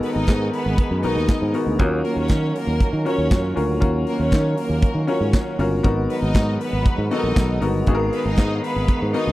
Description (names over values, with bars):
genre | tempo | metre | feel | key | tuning
disco | 118 BPM | 4/4 | straight | unclear | A4 = 440 Hz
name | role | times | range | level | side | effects
clear studio string section | second line | 0.0-9.3 s | Bb3 to Eb5 | -28 LUFS | right 1 dB | none
clear grand piano | accompaniment | 0.0-9.3 s | Cb4 to Bb4 | -24 LUFS | left 2 dB | none
percussive tonewheel organ | sustained chords | 0.0-9.3 s | Eb3 to F5 | -29 LUFS | right 4 dB | overdrive, chorus vibrato, stopped rotary speaker
modern studio drum kit | drums | 0.0-9.3 s | handclaps, hi-hat, kick drum, snare drum | -18 LUFS | equal | none
fingered electric bass | bass | 0.2-9.3 s | G1 to Eb3 | -22 LUFS | equal | none
room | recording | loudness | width
little or no reverb | dry, close 1970s-style studio recording | -18 LUFS | side -16 dB against mid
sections
0.0-9.3 A section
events
none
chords
0.0 Abm7; 1.8 Ebm7; 5.8 Abm7